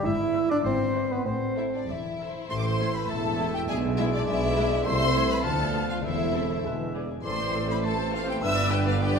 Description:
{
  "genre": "cinematic, playful, whimsical film cue",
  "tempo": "101 BPM",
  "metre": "2/4",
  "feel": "straight",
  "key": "A minor",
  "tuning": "A4 = 442 Hz",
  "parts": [
    { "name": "bright clarinet", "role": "second line", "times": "0.0-9.2 s", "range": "B4 to E5", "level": "-39 LUFS", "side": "left 2 dB", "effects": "none" },
    { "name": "mellow hollow concert flute", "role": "second line", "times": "0.0-9.2 s", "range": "D5 to E6", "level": "-35 LUFS", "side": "left 1 dB", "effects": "none" },
    { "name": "mellow bassoon", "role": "accompaniment", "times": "0.0-9.2 s", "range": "D3 to E4", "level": "-31 LUFS", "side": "right 2 dB", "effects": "none" },
    { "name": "dark French horn section", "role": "sustained chords", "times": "0.0-9.2 s", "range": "G#3 to A4", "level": "-34 LUFS", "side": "left 1 dB", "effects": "none" },
    { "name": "concert harp", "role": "arpeggios", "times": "0.0-9.2 s", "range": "G2 to C6", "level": "-34 LUFS", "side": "left 4 dB", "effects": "none" },
    { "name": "dark studio cello section", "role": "bass", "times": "0.0-9.2 s", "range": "D2 to C3", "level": "-33 LUFS", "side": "right 2 dB", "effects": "none" },
    { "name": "warm studio double bass section", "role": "bass", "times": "0.1-9.2 s", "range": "E1 to D2", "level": "-34 LUFS", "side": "right 2 dB", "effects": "none" },
    { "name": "warm studio violin section", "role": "second line", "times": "0.3-9.2 s", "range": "D4 to E5", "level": "-34 LUFS", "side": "left 4 dB", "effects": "none" },
    { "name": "rich studio violin section", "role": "melody", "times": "0.4-9.2 s", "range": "D5 to E6", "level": "-33 LUFS", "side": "left 3 dB", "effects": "none" },
    { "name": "clear studio viola section", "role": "accompaniment", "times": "0.4-9.2 s", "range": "G#3 to D5", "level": "-36 LUFS", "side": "equal", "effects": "none" },
    { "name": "mellow cor anglais", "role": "second line", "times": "2.5-9.2 s", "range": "B4 to F5", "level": "-36 LUFS", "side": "right 1 dB", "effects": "none" },
    { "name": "warm tuba", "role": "bass", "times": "2.5-9.2 s", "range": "E1 to D2", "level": "-34 LUFS", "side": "right 3 dB", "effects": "none" }
  ],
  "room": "wet recital hall reverb, RT60 1.4 s",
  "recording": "recorded in a church or concert hall",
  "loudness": "-24 LUFS",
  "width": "side -6 dB against mid",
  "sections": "0.0-2.5 A section; 2.5-9.2 B section",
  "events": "none",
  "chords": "0.0 E/G#; 0.6 E7/G#; 1.3 Am; 3.7 E7/B; 4.9 Am/C; 5.5 Bm7b5/D; 6.0 Am/E; 6.7 E; 7.3 Am; 8.4 G",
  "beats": "| 0.05 0.65 | 1.26 1.88 | 2.50 3.09 | 3.68 4.27 | 4.86 5.45 | 6.05 6.65 | 7.25 7.85 | 8.43 9.02"
}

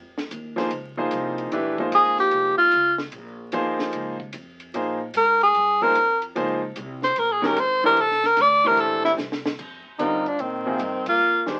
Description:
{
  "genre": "modal jazz",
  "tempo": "149 BPM",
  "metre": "4/4",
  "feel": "swing 67% on 8ths",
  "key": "Bb dorian",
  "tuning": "A4 = 437 Hz",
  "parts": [
    { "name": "upright bass", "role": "bass", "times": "0.0-11.6 s", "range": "Ab1 to Bb2", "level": "-42 LUFS", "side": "equal", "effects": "none" },
    { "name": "compact cocktail drum kit", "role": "drums", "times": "0.2-11.5 s", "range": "crash cymbal, hi-hat, kick drum, ride cymbal, snare drum", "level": "-36 LUFS", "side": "equal", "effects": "none" },
    { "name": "clear baby grand piano", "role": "accompaniment", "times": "0.6-11.6 s", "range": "C3 to C5", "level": "-28 LUFS", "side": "equal", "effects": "none" },
    { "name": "breathy tenor saxophone", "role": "melody", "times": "1.9-11.5 s", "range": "C4 to D5", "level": "-20 LUFS", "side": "equal", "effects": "none" },
    { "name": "brilliant trombone", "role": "second line", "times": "10.0-11.5 s", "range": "Eb3 to Bb3", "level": "-34 LUFS", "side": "equal", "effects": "none" }
  ],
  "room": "moderate studio ambience, RT60 0.5 s",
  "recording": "very old 78 rpm record, vinyl crackle",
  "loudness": "-22 LUFS",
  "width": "mono",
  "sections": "0.0-9.6 A section; 9.6-11.6 B section",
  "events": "tenor saxophone solo 0.0-9.6; drum fill 9.2-9.6; band accent 11.0",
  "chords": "0.0 Bbm9; 8.0 C13; 9.6 F9sus4",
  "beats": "0.30 0.71 1.11 | 1.51 1.92 2.32 2.72 | 3.13 3.53 3.93 4.34 | 4.74 5.14 5.55 5.95 | 6.36 6.76 7.16 7.57 | 7.97 8.37 8.78 9.18 | 9.58 9.99 10.39 10.80 | 11.20"
}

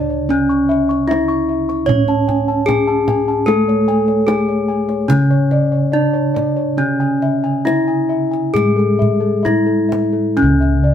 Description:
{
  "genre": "Javanese gamelan",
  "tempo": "64-76 BPM",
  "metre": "4/4",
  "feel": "straight",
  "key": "C# pelog",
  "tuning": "A4 = 442 Hz",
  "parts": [
    { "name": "gamelan-type bronze metallophone", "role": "melody", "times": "0.0-10.9 s", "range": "C#4 to C#5", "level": "-18 LUFS", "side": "left 1 dB", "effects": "none" },
    { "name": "gamelan-type bronze metallophone", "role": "accompaniment", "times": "0.0-10.9 s", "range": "C#3 to C#4", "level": "-21 LUFS", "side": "right 2 dB", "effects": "none" },
    { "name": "gamelan-type bossed gongs", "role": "arpeggios", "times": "0.0-10.9 s", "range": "A4-20c to C#6", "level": "-22 LUFS", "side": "left 6 dB", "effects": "none" },
    { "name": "gamelan-type bossed gongs", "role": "bass", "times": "0.0-10.9 s", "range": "C#2 to A4-20c", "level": "-19 LUFS", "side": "equal", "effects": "none" },
    { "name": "kendang", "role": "percussion", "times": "0.5-10.7 s", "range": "none", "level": "-23 LUFS", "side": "right 2 dB", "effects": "none" }
  ],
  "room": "light reverb",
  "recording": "band playing live in one room",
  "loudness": "-13 LUFS",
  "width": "side -9 dB against mid",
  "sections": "0.0-10.4 A section",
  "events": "none",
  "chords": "none",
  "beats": "| 0.29 1.09 1.88 2.68 | 3.47 4.28 5.09 5.93 | 6.78 7.65 8.54 9.44 | 10.37"
}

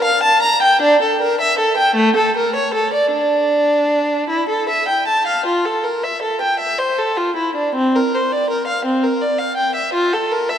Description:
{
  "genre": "classical, baroque-style suite movement for unaccompanied violin",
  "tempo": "50-55 BPM (dotted quarters)",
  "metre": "6/8",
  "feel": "rubato",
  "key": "D minor, F major from 5.5 s",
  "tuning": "A4 = 440 Hz",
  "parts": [
    { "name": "warm violin", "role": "solo", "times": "0.0-10.6 s", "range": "A3 to Bb5", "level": "-14 LUFS", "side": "equal", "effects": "none" }
  ],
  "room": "wet church reverb, RT60 3.2 s",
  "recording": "none",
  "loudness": "-14 LUFS",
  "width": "side -9 dB against mid",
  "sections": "0.0-5.5 A section; 5.5-10.6 A section",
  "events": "none",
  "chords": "none",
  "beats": "| 0.81 1.95 | 3.12 4.30 | 5.46 6.58 | 7.73 8.84 | 9.94"
}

